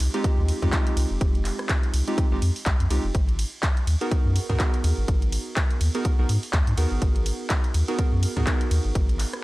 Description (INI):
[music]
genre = deep house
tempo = 124 BPM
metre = 4/4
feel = swing 58% on 16ths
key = unclear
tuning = A4 = 441 Hz
[part]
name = warm analog keys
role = stabs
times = 0.0-9.4 s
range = Ab3 to Bb4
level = -30 LUFS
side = right 2 dB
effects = chorus, sidechain pumping, tape echo
[part]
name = round analog bass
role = bass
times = 0.0-9.2 s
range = F1 to Ab2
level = -23 LUFS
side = equal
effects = sidechain pumping
[part]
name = house drum kit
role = drums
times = 0.0-9.4 s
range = handclaps, hi-hat, ride cymbal, rim click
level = -32 LUFS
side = equal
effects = overdrive
[part]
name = electronic kick drum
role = drums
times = 0.2-9.1 s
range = none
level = -23 LUFS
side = equal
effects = overdrive
[sound]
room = little or no reverb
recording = dry, gritty hardware recording, transformer saturation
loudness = -21 LUFS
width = side -19 dB against mid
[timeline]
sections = 0.0-9.4 A section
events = none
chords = 0.0 Fm9; 3.1 Abm9